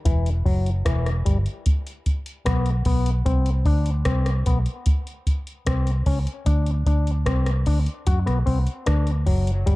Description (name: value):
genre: dub reggae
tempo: 75 BPM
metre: 4/4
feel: straight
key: unclear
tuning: A4 = 440 Hz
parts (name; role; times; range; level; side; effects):
- auto-wah clav; riff; 0.1-9.8 s; E3 to F#4; -28 LUFS; left 4 dB; overdrive, dub echo
- vintage muted fingered electric bass; bass; 0.1-9.8 s; E1 to F#2; -21 LUFS; equal; none
- soft vintage rhythm box; drums; 0.1-9.8 s; hi-hat, kick drum, rim click; -22 LUFS; equal; none
room: digital ambience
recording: dark, warm production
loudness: -20 LUFS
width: side -20 dB against mid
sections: 0.0-9.8 A section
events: none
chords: 0.1 E5; 3.3 N.C.; 6.5 D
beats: | 0.06 0.86 1.66 2.46 | 3.26 4.06 4.86 5.67 | 6.47 7.27 8.07 8.87 | 9.67